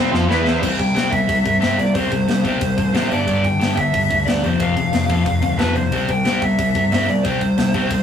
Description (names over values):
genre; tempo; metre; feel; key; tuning
punk rock; 181 BPM; 4/4; straight; C major; A4 = 438 Hz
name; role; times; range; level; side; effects
fuzz guitar; riff; 0.0-0.6 s; C3 to F4; -25 LUFS; equal; distortion
sludgy distorted guitar; riff; 0.0-8.0 s; F2 to F4; -19 LUFS; left 2 dB; overdrive
tight distorted guitar; riff; 0.0-0.6 s; C3 to F4; -23 LUFS; right 5 dB; distortion
hollow-body short-scale picked electric bass; bass; 0.0-8.0 s; F1 to C3; -26 LUFS; right 1 dB; none
tight metal drum kit; drums; 0.1-8.0 s; crash cymbal, hi-hat, kick drum, snare drum; -23 LUFS; equal; none
high-gain lead guitar; melody; 0.3-8.0 s; B4 to G5; -21 LUFS; right 1 dB; distortion
room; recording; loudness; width
moderate booth ambience, RT60 0.2 s; rough rehearsal-room recording, tube saturation, small room ambience; -16 LUFS; side -8 dB against mid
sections
0.6-8.0 A section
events
drum fill 0.0-0.6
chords
0.3 E5; 0.6 C; 3.1 G5; 4.4 F5; 5.9 C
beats
0.29 | 0.62 0.96 1.29 1.62 | 1.95 2.28 2.61 2.95 | 3.28 3.61 3.94 4.27 | 4.60 4.93 5.26 5.60 | 5.93 6.26 6.59 6.92 | 7.25 7.58 7.91